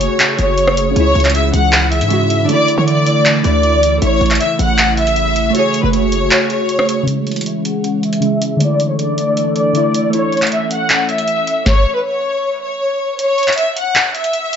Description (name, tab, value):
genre	hip hop, trap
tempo	157 BPM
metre	4/4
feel	half-time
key	C# phrygian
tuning	A4 = 440 Hz
part	warm studio violin section	melody	0.0-14.6 s	B4 to F#5	-16 LUFS	left 1 dB	low-pass filter, digital delay
part	glassy digital keys	accompaniment	0.0-11.7 s	C#3 to C#5	-20 LUFS	equal	chorus, phaser, low-pass filter
part	airy breathy pad	sustained chords	0.0-11.6 s	C#3 to A4	-20 LUFS	right 2 dB	chorus, low-pass filter
part	hard-hitting 808-style bass	bass	0.0-6.3 s	F#1 to D3	-16 LUFS	equal	none
part	booming analog drum machine	drums	0.0-14.6 s	handclaps, hi-hat, kick drum, rim click, snare drum	-17 LUFS	equal	none
room	light reverb, digital ambience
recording	nothing above 7.7 kHz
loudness	-12 LUFS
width	side -8 dB against mid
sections	0.0-7.1 A section; 7.1-13.2 B section; 13.2-14.6 C section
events	kick muted 6.3-7.1, 13.2-14.6; filter sweep 7.1-13.2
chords	0.0 F#madd9; 1.0 C#m; 2.5 Dsus2; 4.0 A; 5.5 F#madd9; 7.1 C#m; 8.6 Dsus2; 10.1 A; 11.7 N.C.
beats	0.20 0.58 | 0.96 1.34 1.73 2.11 | 2.49 2.87 3.25 3.64 | 4.02 4.40 4.78 5.17 | 5.55 5.93 6.31 6.69 | 7.08 7.46 7.84 8.22 | 8.60 8.99 9.37 9.75 | 10.13 10.52 10.90 11.28 | 11.66 12.04 12.43 12.81 | 13.19 13.57 13.96 14.34